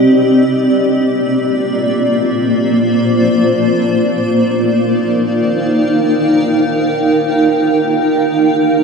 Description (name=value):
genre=ambient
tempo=free time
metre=none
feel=none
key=Eb major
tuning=A4 = 439 Hz
part: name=granular cloud pad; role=solo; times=0.0-8.8 s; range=Bb3 to G5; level=-11 LUFS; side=equal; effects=built-in reverb, diffuse ambient delay
room=wet huge ambient reverb, RT60 8.2 s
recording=cassette tape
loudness=-11 LUFS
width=side -5 dB against mid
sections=0.0-7.5 A section; 7.5-8.8 B section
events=none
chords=0.4 Bb; 3.9 Ebmaj7; 7.5 Ebadd9